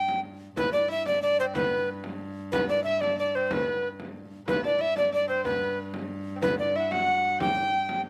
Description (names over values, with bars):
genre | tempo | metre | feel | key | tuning
medieval dance | 123 BPM (dotted quarters) | 6/8 | straight | G major | A4 = 436 Hz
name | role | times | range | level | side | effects
alto recorder | melody | 0.0-8.0 s | B4 to G5 | -28 LUFS | equal | none
warm viola da gamba | drone | 0.0-8.1 s | G2 | -41 LUFS | equal | none
frame drum | percussion | 0.1-8.0 s | none | -38 LUFS | equal | none
dark erhu | second line | 0.6-8.0 s | B4 to G5 | -39 LUFS | equal | slapback echo
lute | second line | 0.6-8.0 s | B3 to G4 | -41 LUFS | equal | slapback echo
room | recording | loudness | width
light reverb | recorded outdoors, with no room sound | -27 LUFS | mono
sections
0.6-8.1 A section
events
none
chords
none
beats
0.09 | 0.57 1.06 | 1.55 2.04 | 2.53 3.02 | 3.50 3.99 | 4.48 4.97 | 5.45 5.94 | 6.43 6.92 | 7.40 7.89